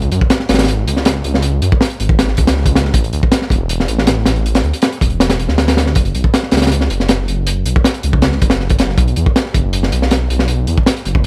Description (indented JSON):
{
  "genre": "drum and bass, jungle",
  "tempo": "159 BPM",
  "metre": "4/4",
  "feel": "straight",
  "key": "F# minor",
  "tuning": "A4 = 440 Hz",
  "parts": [
    { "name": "dark detuned saw bass", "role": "bass", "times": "0.0-11.3 s", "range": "E1 to F#2", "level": "-18 LUFS", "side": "equal", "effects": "none" },
    { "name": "crunchy breakbeat drum kit", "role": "drums", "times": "0.0-11.3 s", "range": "hi-hat, kick drum, snare drum", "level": "-16 LUFS", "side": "equal", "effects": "none" }
  ],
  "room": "little or no reverb",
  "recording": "vinyl crackle",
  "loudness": "-14 LUFS",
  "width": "mono",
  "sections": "0.0-11.3 A section",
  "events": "none",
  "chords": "none"
}